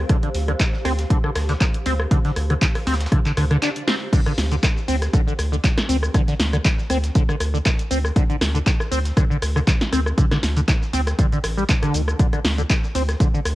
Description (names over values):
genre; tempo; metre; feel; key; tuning
acid house; 119 BPM; 4/4; swing 54% on 16ths; D phrygian; A4 = 440 Hz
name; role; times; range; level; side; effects
round analog bass; bass; 0.0-13.6 s; A1 to D2; -22 LUFS; equal; sidechain pumping
granular cloud pad; texture; 0.0-4.1 s; G4 to F5; -35 LUFS; right 1 dB; built-in reverb, sidechain pumping, cassette tape
liquid acid bass; riff; 0.1-13.4 s; D3 to D4; -24 LUFS; equal; phaser, overdrive, wide subtle chorus, sidechain pumping, cassette tape, tape echo
breakbeat sampler-style drum kit; drums; 0.1-13.6 s; hi-hat, snare drum; -39 LUFS; equal; none
electronic kick drum; drums; 0.1-13.3 s; none; -19 LUFS; equal; cassette tape
punchy analog drum machine; drums; 0.1-13.6 s; crash cymbal, handclaps, hi-hat, rim click, shaker, snare drum; -25 LUFS; equal; cassette tape
room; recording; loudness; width
little or no reverb; home recording on cassette; -18 LUFS; side -16 dB against mid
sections
0.0-4.1 A section; 4.1-13.6 B section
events
break 3.6-4.1; drum fill 3.9; drop 4.1-13.6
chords
0.0 Dm; 4.1 D5